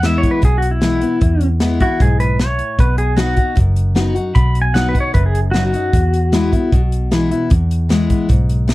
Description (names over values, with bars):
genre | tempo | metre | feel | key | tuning
honky-tonk and classic country | 153 BPM | 4/4 | straight | E major | A4 = 440 Hz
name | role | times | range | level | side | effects
pedal steel guitar | melody | 0.0-6.8 s | E4 to B5 | -20 LUFS | equal | none
picked steel-string acoustic guitar | accompaniment | 0.0-8.7 s | E2 to F#4 | -19 LUFS | left 2 dB | none
vintage muted fingered electric bass | bass | 0.0-8.7 s | F#1 to E2 | -16 LUFS | equal | none
natural country drum kit | drums | 0.0-8.7 s | hi-hat, kick drum, snare drum | -16 LUFS | equal | none
room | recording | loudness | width
little or no reverb | dry, close 1970s-style studio recording | -13 LUFS | side -18 dB against mid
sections
0.0-8.7 A section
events
pedal steel guitar solo 0.0-8.7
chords
0.0 E; 2.8 B; 5.9 E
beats
0.04 0.43 0.82 | 1.22 1.61 2.00 2.40 | 2.79 3.18 3.57 3.97 | 4.36 4.75 5.14 5.54 | 5.93 6.33 6.72 7.11 | 7.51 7.90 8.29 8.69